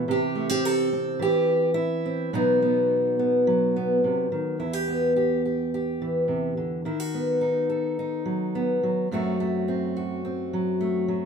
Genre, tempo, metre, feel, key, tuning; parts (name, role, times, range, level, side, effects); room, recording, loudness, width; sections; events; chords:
folk, solo fingerstyle acoustic guitar; 106 BPM; 4/4; straight; E minor; A4 = 441 Hz
fingerpicked steel-string acoustic guitar; solo; 0.0-11.3 s; E2 to A4; -22 LUFS; equal
wet small room ambience, RT60 0.5 s; -22 LUFS; side -6 dB against mid
0.0-4.6 A section; 4.6-11.3 B section
0.1 C; 2.3 B; 4.6 Em; 6.8 B/D#; 9.1 F#dim